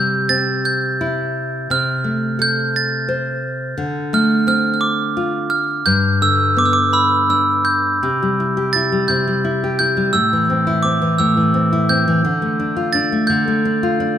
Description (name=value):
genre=children's music, lullaby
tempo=57 BPM (dotted quarters)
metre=6/8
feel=rubato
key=C major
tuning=A4 = 439 Hz
part: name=glockenspiel with hard plastic mallets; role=melody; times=0.0-14.2 s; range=B5 to A6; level=-17 LUFS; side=right 2 dB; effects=none
part: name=nylon-string guitar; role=accompaniment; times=0.0-14.2 s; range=G2 to C5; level=-18 LUFS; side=left 1 dB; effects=none
room=moderate scoring stage reverb, RT60 1.5 s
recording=minimal, uncompressed stereo recording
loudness=-15 LUFS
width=side -10 dB against mid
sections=0.0-8.0 A section; 8.0-14.2 B section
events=none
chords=0.0 C; 1.7 F/C; 3.8 Dm7; 5.9 G; 8.0 C; 10.2 Am; 12.3 Dm